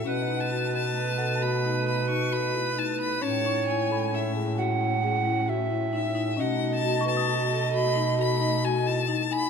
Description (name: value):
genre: contemporary instrumental, chamber music in an uneven meter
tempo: 133 BPM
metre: 7/4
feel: straight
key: unclear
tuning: A4 = 443 Hz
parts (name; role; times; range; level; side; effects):
- clear violin; melody; 0.0-9.5 s; E5 to C#6; -31 LUFS; left 5 dB; none
- marimba with medium mallets; arpeggios; 0.0-9.5 s; C#4 to B4; -31 LUFS; left 9 dB; none
- mellow hollow tenor recorder; second line; 0.1-9.2 s; B4 to F#5; -29 LUFS; right 9 dB; none
- dark studio string section; sustained chords; 0.1-9.5 s; A2 to D#4; -36 LUFS; equal; none
- warm bass clarinet; bass; 0.1-9.5 s; A2 to B2; -29 LUFS; right 1 dB; none
- worn celesta; texture; 0.1-9.5 s; B4 to D#6; -36 LUFS; left 6 dB; none
room: light reverb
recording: none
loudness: -24 LUFS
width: side -6 dB against mid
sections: 0.0-9.5 A section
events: none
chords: 0.0 B7; 3.2 Amaj7; 6.4 B7